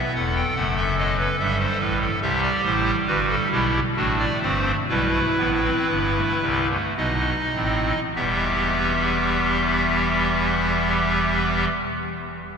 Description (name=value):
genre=classical, baroque-style 4-part fugue for pipe organ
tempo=48-73 BPM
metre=3/4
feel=straight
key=E minor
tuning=A4 = 440 Hz
part: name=pipe organ, clarinet reed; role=solo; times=0.0-11.7 s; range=E1 to G5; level=-20 LUFS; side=equal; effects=none
room=wet cathedral reverb, RT60 4.9 s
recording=minimal, uncompressed stereo recording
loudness=-19 LUFS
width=side -6 dB against mid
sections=0.0-8.2 A section; 8.2-11.9 B section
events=slowing down 1.0-8.2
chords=0.0 B7; 1.4 Em/G; 2.2 C; 4.0 Am; 4.9 Em; 7.0 B7; 8.2 Em